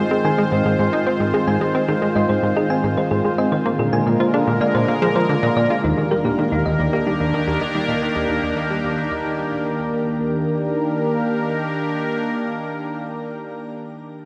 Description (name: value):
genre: ambient, sequencer-driven space music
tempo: 110 BPM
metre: 4/4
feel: straight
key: Eb major from 5.8 s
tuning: A4 = 440 Hz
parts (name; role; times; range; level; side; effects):
- sweeping resonant pad; sustained chords; 0.0-13.7 s; D3 to C5; -23 LUFS; equal; chorus, shimmer reverb
- plucky analog bass; riff; 0.0-10.5 s; Eb2 to F4; -24 LUFS; equal; delay, shimmer reverb
- thumb-piano-like synth pluck; arpeggios; 0.1-10.5 s; Eb4 to Ab5; -28 LUFS; equal; chorus, delay, shimmer reverb
room: wet cathedral reverb, RT60 5.7 s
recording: in a vast, echoing space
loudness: -20 LUFS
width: mono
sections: 0.0-5.8 A section; 5.8-10.2 B section; 10.2-14.3 C section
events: filter sweep on synth arpeggio sound 0.0-5.8; fade-out on analog synth bass 5.8-10.2; fade-out on synth arpeggio sound 5.8-10.2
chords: 0.0 Ab; 3.7 Bb7; 5.8 Ebmaj7